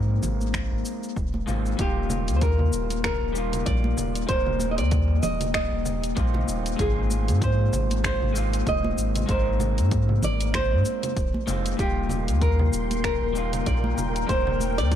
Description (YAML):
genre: sunset chillout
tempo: 96 BPM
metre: 4/4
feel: swing 57% on 16ths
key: Eb major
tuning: A4 = 441 Hz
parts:
  - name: flamenco guitar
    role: melody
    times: 0.0-15.0 s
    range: F4 to Eb5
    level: -29 LUFS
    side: right 1 dB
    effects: analog delay
  - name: electric guitar through a small old amp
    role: accompaniment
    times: 0.0-15.0 s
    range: G3 to Bb4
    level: -30 LUFS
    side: left 2 dB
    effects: auto-pan, analog delay
  - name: warm sub bass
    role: bass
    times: 0.0-15.0 s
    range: Eb1 to Ab2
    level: -25 LUFS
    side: equal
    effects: tube saturation
  - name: smooth R&B drum kit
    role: drums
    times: 0.2-15.0 s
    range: cabasa, congas, finger snaps, hi-hat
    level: -32 LUFS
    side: right 1 dB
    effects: tape echo
  - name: congas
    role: percussion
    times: 0.2-14.7 s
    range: none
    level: -35 LUFS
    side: right 3 dB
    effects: tape echo
  - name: electronic kick drum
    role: drums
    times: 0.5-15.0 s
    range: none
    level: -29 LUFS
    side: equal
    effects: overdrive
  - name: soft string machine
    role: sustained chords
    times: 11.8-15.0 s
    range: Bb4 to C6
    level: -33 LUFS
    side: left 2 dB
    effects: phaser, ensemble chorus
room: digital ambience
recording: echo-heavy mix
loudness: -22 LUFS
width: side -10 dB against mid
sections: 0.0-1.8 A section; 1.8-15.0 B section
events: none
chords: 0.0 Ab6; 1.8 Eb6; 6.8 Ab6; 11.8 Eb6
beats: 0.54 1.17 | 1.79 2.42 3.04 3.67 | 4.29 4.92 5.54 6.17 | 6.79 7.42 8.04 8.67 | 9.29 9.92 10.54 11.17 | 11.79 12.42 13.04 13.67 | 14.29 14.92